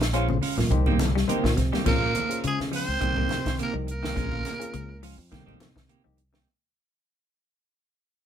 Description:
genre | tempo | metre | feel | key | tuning
afrobeat | 104 BPM | 4/4 | swing 54% on 16ths | Bb dorian | A4 = 439 Hz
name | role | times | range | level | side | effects
semi-hollow electric guitar | arpeggios | 0.0-6.4 s | Db3 to G3 | -33 LUFS | left 8 dB | none
clean electric guitar | stabs | 0.0-6.5 s | Eb3 to G4 | -32 LUFS | right 7 dB | none
fingered electric bass | bass | 0.0-6.4 s | Bb1 to Db3 | -28 LUFS | equal | none
compact cocktail drum kit | drums | 0.0-6.5 s | crash cymbal, hi-hat, kick drum, snare drum | -29 LUFS | equal | none
overdriven reed electric piano | accompaniment | 0.1-6.2 s | Bb3 to C5 | -33 LUFS | left 5 dB | none
congas | percussion | 0.3-6.0 s | none | -32 LUFS | equal | none
raspy tenor saxophone | melody | 1.9-5.0 s | Ab4 to C5 | -30 LUFS | equal | none
mellow trombone | second line | 1.9-5.0 s | Ab3 to C4 | -37 LUFS | right 5 dB | none
room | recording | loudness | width
moderate small room ambience, RT60 0.5 s | band playing live in one room | -23 LUFS | side -9 dB against mid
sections
0.0-1.9 A section; 1.9-6.5 B section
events
fade-out 1.9-6.5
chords
0.0 Bbm7; 0.7 Cm7; 1.9 Bbm7; 3.0 Cm7; 4.2 Bbm7; 5.3 Cm7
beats
0.14 0.71 1.29 | 1.86 2.44 3.01 3.59 | 4.16 4.74 5.32 5.89

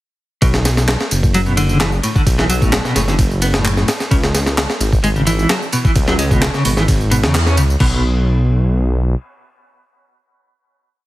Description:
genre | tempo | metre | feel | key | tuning
breakbeat, breaks | 130 BPM | 4/4 | straight | unclear | A4 = 441 Hz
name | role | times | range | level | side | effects
clean electric guitar | riff | 0.4-8.0 s | A2 to C#4 | -19 LUFS | equal | tremolo, dub echo
dark detuned saw bass | bass | 0.4-9.1 s | F#1 to E2 | -16 LUFS | equal | none
breakbeat sampler-style drum kit | drums | 0.4-7.9 s | crash cymbal, hi-hat, kick drum, ride cymbal, snare drum | -17 LUFS | equal | none
garage drum kit | drums | 0.4-7.8 s | handclaps, ride cymbal, tambourine | -24 LUFS | equal | none
room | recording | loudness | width
digital ambience | heavily compressed radio sound, multiband compression | -13 LUFS | side -17 dB against mid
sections
0.4-7.8 drop; 7.8-11.1 final note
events
drop 0.4-7.8; band accent 7.3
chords
0.4 B7(no3); 3.9 C#m7; 7.8 N.C.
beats
| 0.42 0.88 1.34 1.80 | 2.27 2.73 3.19 3.65 | 4.11 4.57 5.04 5.50 | 5.96 6.42 6.88 7.34 | 7.80 8.27 8.73

